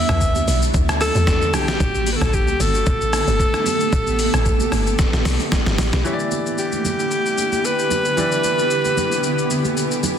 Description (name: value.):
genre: amapiano.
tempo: 113 BPM.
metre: 4/4.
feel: swing 55% on 16ths.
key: E minor.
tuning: A4 = 440 Hz.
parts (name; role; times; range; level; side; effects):
breathy alto saxophone; melody; 0.0-10.0 s; G4 to E5; -21 LUFS; equal; tape echo.
granular cloud pad; sustained chords; 0.0-10.2 s; D3 to G4; -24 LUFS; equal; built-in reverb, sidechain pumping.
woody log drum bass; bass; 0.0-6.0 s; G1 to E2; -21 LUFS; equal; none.
trip hop sampler-style drum kit; drums; 0.1-10.2 s; hi-hat, kick drum, rim click, shaker, snare drum, toms; -22 LUFS; equal; none.
congas; percussion; 0.4-10.2 s; none; -30 LUFS; right 8 dB; none.
clear baby grand piano; accompaniment; 6.0-10.2 s; E3 to D5; -27 LUFS; left 2 dB; none.
room: light reverb.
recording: dense, heavily limited modern master.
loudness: -16 LUFS.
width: side -8 dB against mid.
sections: 0.0-6.1 A section; 6.1-10.2 B section.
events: drop 0.0-6.1; drum fill 5.0-6.1.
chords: 0.0 Em7; 1.8 A9sus4; 6.1 Em7.